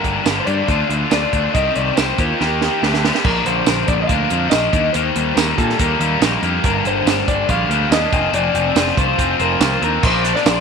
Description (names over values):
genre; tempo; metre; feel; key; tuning
indie rock; 142 BPM; 4/4; straight; unclear; A4 = 441 Hz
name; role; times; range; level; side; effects
electric guitar through a small old amp; melody; 0.0-10.6 s; F4 to F5; -22 LUFS; left 2 dB; slapback echo
cranked stack guitar; riff; 0.0-10.6 s; F2 to Bb4; -20 LUFS; left 16 dB; overdrive
crunchy overdriven guitar; riff; 0.0-10.6 s; G2 to C5; -23 LUFS; right 11 dB; lush chorus, slapback echo
growling picked electric bass; bass; 0.0-10.6 s; F1 to Bb2; -22 LUFS; left 1 dB; overdrive
compact cocktail drum kit; drums; 0.0-10.6 s; crash cymbal, hi-hat, kick drum, snare drum, tambourine; -19 LUFS; right 4 dB; none
tube shaker; percussion; 10.0-10.6 s; none; -36 LUFS; right 17 dB; none
room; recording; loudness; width
light reverb, studio ambience; 1960s-style stereo with parts hard left and right; -14 LUFS; side -6 dB against mid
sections
0.0-3.3 A section; 3.3-10.0 B section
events
drum fill 2.4-3.3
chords
0.0 Gm; 0.7 Dm; 1.5 Cm; 2.2 Eb; 2.8 Dsus4; 3.3 Bb; 4.7 Eb; 6.6 Gm; 8.1 Fsus4; 10.0 Bbadd9